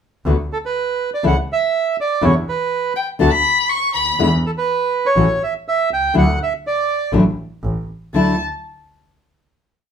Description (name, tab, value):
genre	tango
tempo	122 BPM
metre	4/4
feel	rubato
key	D major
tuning	A4 = 440 Hz
part	nylon-string guitar	accompaniment	0.3-8.3 s	B2 to F#4	-17 LUFS	left 3 dB	none
part	clear double bass	bass	0.3-8.3 s	A1 to E2	-20 LUFS	equal	none
part	bandoneon	melody	0.5-7.1 s	A4 to G5	-18 LUFS	right 4 dB	none
part	dark violin	second line	3.0-4.3, 8.1-8.4 s	G5 to C#6	-18 LUFS	left 3 dB	none
room	moderate studio reverb, RT60 0.6 s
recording	minimal, uncompressed stereo recording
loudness	-16 LUFS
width	side -7 dB against mid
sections	0.3-8.1 A section; 8.1-9.9 final chord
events	none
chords	0.3 D6; 1.2 A/C# (rootless); 2.2 Em; 3.2 D5; 4.2 E5; 5.2 A; 6.1 Dadd9; 7.6 N.C.; 8.1 Dadd9